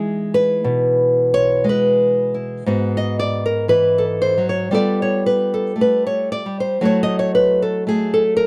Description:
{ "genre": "solo jazz", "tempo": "59 BPM", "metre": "4/4", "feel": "swing 67% on 8ths, rubato", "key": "unclear", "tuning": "A4 = 440 Hz", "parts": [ { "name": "nylon-string guitar", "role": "solo", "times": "0.0-8.5 s", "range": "G#2 to D#5", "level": "-18 LUFS", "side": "equal", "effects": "none" } ], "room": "light reverb", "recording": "dark, warm production", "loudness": "-18 LUFS", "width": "mono", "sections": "0.0-8.5 A section", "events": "nylon-string guitar solo 0.0-8.5", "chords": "0.0 Emaj7; 2.7 G#7alt; 4.7 G9; 6.8 F#m7" }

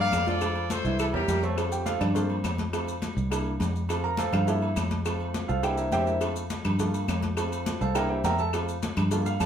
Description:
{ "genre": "latin, salsa", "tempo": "207 BPM", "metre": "4/4", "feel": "straight", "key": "F major", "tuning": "A4 = 439 Hz", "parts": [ { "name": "brilliant horn section", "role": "melody", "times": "0.0-1.4 s", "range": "E4 to F5", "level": "-29 LUFS", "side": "left 2 dB", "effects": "none" }, { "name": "clear grand piano", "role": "accompaniment", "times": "0.0-9.5 s", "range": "E3 to Bb5", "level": "-29 LUFS", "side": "right 2 dB", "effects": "none" }, { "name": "fingered electric bass", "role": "bass", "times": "0.0-9.5 s", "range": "C2 to G2", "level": "-29 LUFS", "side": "equal", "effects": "none" }, { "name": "claves", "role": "percussion", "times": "0.1-9.5 s", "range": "none", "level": "-41 LUFS", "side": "left 3 dB", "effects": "none" }, { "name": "congas", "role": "percussion", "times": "0.1-9.5 s", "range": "none", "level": "-34 LUFS", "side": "left 2 dB", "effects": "none" }, { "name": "cowbell", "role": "percussion", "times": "0.1-9.5 s", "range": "none", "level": "-36 LUFS", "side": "equal", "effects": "none" }, { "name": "maracas", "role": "percussion", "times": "0.1-9.5 s", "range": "none", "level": "-44 LUFS", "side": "left 7 dB", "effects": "none" }, { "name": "timbales and agogo bells", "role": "percussion", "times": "0.1-9.5 s", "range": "none", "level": "-37 LUFS", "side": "right 3 dB", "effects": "none" } ], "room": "wet studio reverb, RT60 0.8 s", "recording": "heard from further back in the room", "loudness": "-25 LUFS", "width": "side -8 dB against mid", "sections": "0.0-1.6 A section; 1.6-9.5 B section", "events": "drum fill 1.1-1.6; grand piano solo 1.6-9.5", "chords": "0.4 F; 1.0 C7; 1.6 F; 2.2 Gm7; 2.7 F; 3.3 C7; 3.9 F; 4.5 Gm7; 5.1 F; 5.6 C7; 6.2 F; 6.8 Gm7; 7.4 F; 8.0 C7; 8.5 F" }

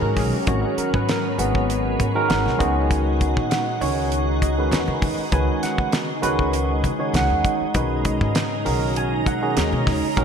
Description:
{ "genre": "electric jazz fusion", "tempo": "99 BPM", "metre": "4/4", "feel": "straight", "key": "unclear", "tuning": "A4 = 440 Hz", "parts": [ { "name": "barky tine electric piano", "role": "accompaniment", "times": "0.0-10.2 s", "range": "D#3 to G#5", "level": "-23 LUFS", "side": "right 2 dB", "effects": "overdrive, lush chorus" }, { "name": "soft additive organ-like pad", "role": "sustained chords", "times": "0.0-10.2 s", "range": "C#3 to A#5", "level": "-26 LUFS", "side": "equal", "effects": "ensemble chorus, built-in reverb" }, { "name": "upright bass", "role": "bass", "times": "0.0-10.2 s", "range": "G#1 to C#3", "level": "-25 LUFS", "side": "left 1 dB", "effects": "none" }, { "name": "damped 70s drum kit", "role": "drums", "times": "0.2-10.2 s", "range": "hi-hat, kick drum, snare drum", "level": "-25 LUFS", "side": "equal", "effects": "none" } ], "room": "moderate lush hall reverb, RT60 2.5 s", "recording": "bright 1980s-style digital production", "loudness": "-19 LUFS", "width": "side -7 dB against mid", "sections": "0.0-10.2 A section", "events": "tine electric piano fill 2.0-2.9", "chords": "0.0 G#m11; 2.6 C#9sus4; 7.8 Bmaj9" }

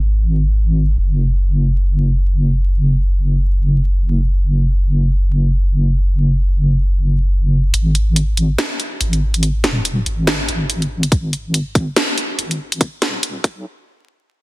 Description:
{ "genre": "deep dubstep", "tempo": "142 BPM", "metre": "4/4", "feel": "swing 59% on 16ths, half-time", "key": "unclear", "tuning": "A4 = 438 Hz", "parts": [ { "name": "deep soft wobble bass", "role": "bass", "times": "0.0-13.7 s", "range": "D#1 to B1", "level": "-15 LUFS", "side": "equal", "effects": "chorus" }, { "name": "garage drum kit", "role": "drums", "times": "7.7-13.5 s", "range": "hi-hat, snare drum", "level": "-18 LUFS", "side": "equal", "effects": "low-pass filter on hats, low-pass filter on snare" }, { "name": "electronic kick drum", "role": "drums", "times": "11.1-13.5 s", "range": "none", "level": "-14 LUFS", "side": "equal", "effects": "none" } ], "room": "little or no reverb", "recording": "dense, heavily limited modern master, vinyl crackle, high-pass filter", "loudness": "-14 LUFS", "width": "side -20 dB against mid", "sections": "0.0-7.7 A section; 7.7-14.4 B section", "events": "build-up 7.7-14.4; filter sweep 7.7-14.4; stop 13.7-14.4", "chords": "none" }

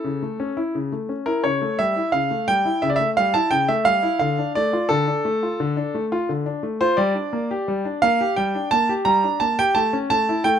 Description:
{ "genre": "classical-period piano sonatina", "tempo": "86 BPM", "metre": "4/4", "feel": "rubato", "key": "unclear", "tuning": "A4 = 440 Hz", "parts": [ { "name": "warm concert grand piano", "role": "solo", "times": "0.0-10.6 s", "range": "C#3 to Bb5", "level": "-19 LUFS", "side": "equal", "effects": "none" } ], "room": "light reverb", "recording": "close, detailed microphones", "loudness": "-19 LUFS", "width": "side -8 dB against mid", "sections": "0.0-10.6 A section", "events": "none", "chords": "0.0 A/C#; 1.4 A7/C#; 4.2 Dm; 7.0 Gm; 9.8 A" }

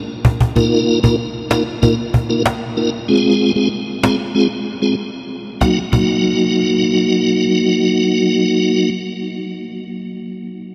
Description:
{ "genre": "dancehall", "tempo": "95 BPM", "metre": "4/4", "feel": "straight", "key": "Eb dorian", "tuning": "A4 = 440 Hz", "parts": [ { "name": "cajon", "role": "drums", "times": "0.2-6.1 s", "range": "none", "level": "-22 LUFS", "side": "equal", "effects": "none" }, { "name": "tonewheel organ", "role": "accompaniment", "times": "0.6-8.9 s", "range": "Gb3 to Bb4", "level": "-18 LUFS", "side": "equal", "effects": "chorus vibrato, fast rotary speaker" } ], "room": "wet cathedral reverb, RT60 6.8 s", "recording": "dreamy mix soaked in reverb", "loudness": "-16 LUFS", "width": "mono", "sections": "0.6-5.6 A section; 5.6-8.1 B section", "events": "drum fill 0.0-0.6; break 5.0-5.6", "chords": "0.0 N.C.; 0.6 Ebsus2; 3.1 Fm; 5.6 Ebm" }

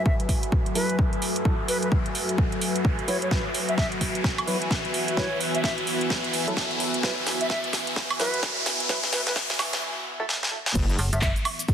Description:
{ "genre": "bass house", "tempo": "129 BPM", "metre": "4/4", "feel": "swing 61% on 16ths", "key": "unclear", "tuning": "A4 = 441 Hz", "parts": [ { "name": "reedy concert flute", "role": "melody", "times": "0.0-11.3 s", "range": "B4 to E5", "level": "-32 LUFS", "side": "equal", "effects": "digital delay" }, { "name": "deep dark ambient pad", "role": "sustained chords", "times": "0.0-11.7 s", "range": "E3 to A4", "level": "-33 LUFS", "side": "left 1 dB", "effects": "chorus, built-in reverb, sidechain pumping" }, { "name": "riser", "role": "sound effects", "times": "0.0-9.8 s", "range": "none", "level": "-30 LUFS", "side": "equal", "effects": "none" }, { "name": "airy breathy pad", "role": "texture", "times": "0.0-9.8 s", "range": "F#4 to G#5", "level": "-32 LUFS", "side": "equal", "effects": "chorus, sidechain pumping" }, { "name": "electronic kick drum", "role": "drums", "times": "0.1-11.7 s", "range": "none", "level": "-24 LUFS", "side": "equal", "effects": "small room ambience" }, { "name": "house drum kit", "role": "drums", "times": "0.2-11.7 s", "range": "crash cymbal, handclaps, hi-hat, ride cymbal, snare drum, woodblock", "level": "-28 LUFS", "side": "right 1 dB", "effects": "high-pass filter on hats, small room ambience, high-pass filter on snare, high-pass filter on perc, high-pass filter on cymbals" }, { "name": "percussive organ stab", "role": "stabs", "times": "0.8-10.3 s", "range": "F#3 to B4", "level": "-35 LUFS", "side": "right 1 dB", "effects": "lush chorus, sidechain pumping, digital delay" }, { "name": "wobble bass", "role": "bass", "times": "10.8-11.0 s", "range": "F#1", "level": "-26 LUFS", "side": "equal", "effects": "chorus, tube saturation, sidechain pumping" }, { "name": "cabasa", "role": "percussion", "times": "10.8-11.7 s", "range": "none", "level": "-35 LUFS", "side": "left 2 dB", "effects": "none" }, { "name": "metallic FM bass", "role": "bass", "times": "11.0-11.3 s", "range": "F#1", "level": "-25 LUFS", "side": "equal", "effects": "sidechain pumping" } ], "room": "moderate lush hall reverb, RT60 2.4 s", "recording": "dense, heavily limited modern master, high-pass filter", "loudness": "-23 LUFS", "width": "side -8 dB against mid", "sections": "0.0-10.8 A section", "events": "build-up 0.0-10.8; riser 0.0-9.8; filter sweep on synth stab 0.0-10.8; filter sweep 0.0-10.8; drum fill 3.3-9.8, 10.3-10.8; break 9.8-10.8", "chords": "0.0 F#m7; 3.3 Esus2; 10.8 F#m7" }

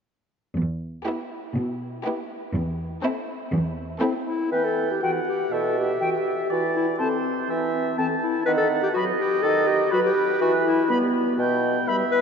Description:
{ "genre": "cinematic, playful, whimsical film cue", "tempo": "122 BPM", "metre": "4/4", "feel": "straight", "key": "E minor", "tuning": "A4 = 437 Hz", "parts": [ { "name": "rich studio cello section", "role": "bass", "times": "0.6-3.9 s", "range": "E2 to B2", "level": "-26 LUFS", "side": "right 1 dB", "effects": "none" }, { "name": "rich studio violin section", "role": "melody", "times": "1.1-4.4 s", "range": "G4 to A4", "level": "-37 LUFS", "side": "equal", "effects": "none" }, { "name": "rich studio violin section", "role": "second line", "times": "1.1-4.4 s", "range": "E4", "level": "-35 LUFS", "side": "right 2 dB", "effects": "none" }, { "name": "rich studio viola section", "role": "accompaniment", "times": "1.1-4.4 s", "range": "B3 to C4", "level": "-34 LUFS", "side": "left 2 dB", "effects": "none" }, { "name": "mellow clarinet", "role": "second line", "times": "4.0-12.2 s", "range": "B3 to B4", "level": "-23 LUFS", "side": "left 2 dB", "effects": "none" }, { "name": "warm oboe", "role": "second line", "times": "4.5-12.2 s", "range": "B4 to A5", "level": "-28 LUFS", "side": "right 3 dB", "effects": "none" }, { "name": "warm bassoon", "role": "accompaniment", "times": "4.5-11.8 s", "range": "B2 to E3", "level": "-27 LUFS", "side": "right 4 dB", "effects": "none" }, { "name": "bright silver concert flute", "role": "second line", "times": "5.0-12.0 s", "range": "G5 to B5", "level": "-32 LUFS", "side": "left 2 dB", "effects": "none" }, { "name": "warm French horn section", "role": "sustained chords", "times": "5.0-12.0 s", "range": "E3 to B4", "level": "-31 LUFS", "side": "left 1 dB", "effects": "none" } ], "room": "wet cathedral reverb, RT60 6.0 s", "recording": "in a vast, echoing space, nothing above 7.7 kHz", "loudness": "-21 LUFS", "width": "side -6 dB against mid", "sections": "0.6-4.5 A section; 4.5-12.2 B section", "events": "none", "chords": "0.6 Em; 2.5 Am/E; 4.5 Em; 6.5 Am/E; 8.5 B/D#; 10.4 Em" }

